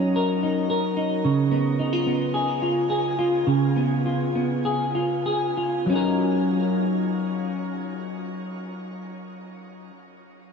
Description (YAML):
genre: dream pop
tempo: 94-110 BPM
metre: 4/4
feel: straight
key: F# major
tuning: A4 = 440 Hz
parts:
  - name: semi-hollow electric guitar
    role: solo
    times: 0.0-10.0 s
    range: C#3 to A#4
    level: -22 LUFS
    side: equal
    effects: lush chorus, digital delay
room: wet shimmer reverb, RT60 8.4 s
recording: dark, warm production, nothing above 7.8 kHz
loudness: -21 LUFS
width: side -5 dB against mid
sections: 0.0-5.9 A section; 5.9-10.5 B section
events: slowing down 1.2-5.9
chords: 0.0 F#6; 1.2 C#7; 5.9 F#6